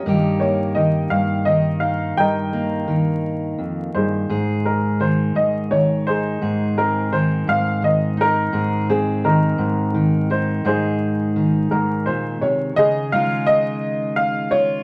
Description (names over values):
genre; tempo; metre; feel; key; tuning
acoustic folk-pop ballad; 57 BPM (dotted quarters); 6/8; straight; unclear; A4 = 441 Hz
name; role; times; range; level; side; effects
warm upright piano; melody; 0.0-14.8 s; Eb4 to G5; -23 LUFS; equal; none
fingerpicked steel-string acoustic guitar; accompaniment; 0.0-14.8 s; F2 to Ab4; -22 LUFS; equal; none
room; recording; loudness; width
wet small room reverb, RT60 0.5 s; vinyl crackle; -20 LUFS; mono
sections
0.0-12.8 A section; 12.8-14.8 B section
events
none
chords
0.1 Eb/G; 4.3 Ab; 12.8 Dbadd9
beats
| 0.06 1.12 | 2.17 3.24 | 4.30 5.37 | 6.42 7.48 | 8.53 9.59 | 10.65 11.71 | 12.77 13.82